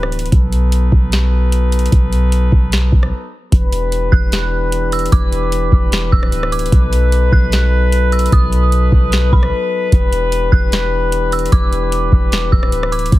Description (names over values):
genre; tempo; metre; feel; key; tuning
hip hop, atmospheric cloud-rap; 150 BPM; 4/4; half-time; E minor; A4 = 440 Hz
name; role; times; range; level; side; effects
mellow brass ensemble; sustained chords; 0.0-13.2 s; E3 to B4; -20 LUFS; left 2 dB; stereo widening, sidechain pumping
clean 808-style bass; bass; 0.0-13.2 s; D1 to B1; -14 LUFS; equal; none
booming analog drum machine; drums; 0.0-13.2 s; hi-hat, kick drum, rim click, snare drum; -16 LUFS; equal; none
dark detuned synth bell; melody; 4.1-13.1 s; B5 to F#6; -23 LUFS; right 4 dB; chorus, tape echo
room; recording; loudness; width
little or no reverb; heavily compressed radio sound, multiband compression; -12 LUFS; side -17 dB against mid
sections
0.0-3.5 A section; 3.5-13.2 B section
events
break 3.1-3.5, 9.5-9.9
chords
0.3 B7; 3.5 Em7; 6.7 B7; 9.9 Em7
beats
| 0.32 0.72 1.12 1.52 | 1.92 2.32 2.72 3.12 | 3.52 3.92 4.32 4.72 | 5.12 5.52 5.92 6.32 | 6.72 7.12 7.52 7.92 | 8.32 8.72 9.12 9.52 | 9.92 10.32 10.72 11.12 | 11.52 11.92 12.32 12.72 | 13.12